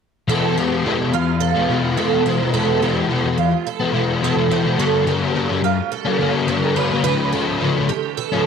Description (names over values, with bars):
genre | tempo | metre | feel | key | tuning
rock | 107 BPM | 4/4 | straight | unclear | A4 = 440 Hz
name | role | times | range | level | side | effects
picked twelve-string acoustic guitar | arpeggios | 0.3-8.5 s | F4 to C5 | -22 LUFS | right 11 dB | ensemble chorus, tape echo
crunchy overdriven guitar | riff | 0.3-8.5 s | F2 to D4 | -18 LUFS | left 5 dB | ensemble chorus
twangy electric guitar | riff | 0.3-8.5 s | D3 to B4 | -31 LUFS | right 12 dB | reverse reverb
room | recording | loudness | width
light reverb, small room reverb | dark, warm production | -16 LUFS | side -6 dB against mid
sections
0.3-8.5 A section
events
none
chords
0.3 F; 4.8 Gadd9; 7.0 Dadd9